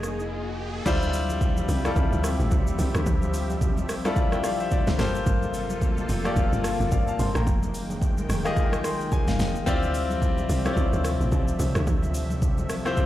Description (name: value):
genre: amapiano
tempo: 109 BPM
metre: 4/4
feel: swing 58% on 16ths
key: D minor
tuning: A4 = 440 Hz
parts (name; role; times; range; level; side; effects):
- clear concert grand piano; accompaniment; 0.0-13.1 s; G3 to C6; -29 LUFS; left 3 dB; none
- warm analog pad; sustained chords; 0.0-13.1 s; C3 to Ab5; -32 LUFS; left 1 dB; chorus, sidechain pumping
- plucky analog bass; bass; 0.0-0.8 s; F1; -35 LUFS; equal; none
- deep house drum kit; drums; 0.0-13.1 s; crash cymbal, hi-hat, kick drum, rim click, shaker, snare drum; -26 LUFS; equal; overdrive
- riser; sound effects; 0.0-0.9 s; none; -38 LUFS; right 1 dB; none
- tight log drum bass; bass; 0.9-12.9 s; F1 to D2; -27 LUFS; equal; none
- congas; percussion; 1.0-13.1 s; none; -33 LUFS; right 1 dB; none
room: light reverb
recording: played on a big sound system in a bare room, large studio reverb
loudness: -22 LUFS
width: side -14 dB against mid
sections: 0.9-13.1 A section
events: riser 0.0-0.9; silent gap 0.3-0.9; drop 0.9-13.1; grand piano fill 8.6-9.7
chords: 0.0 Fm7; 0.9 Dm11; 5.0 Gm11; 7.5 Fm11; 9.7 Dm11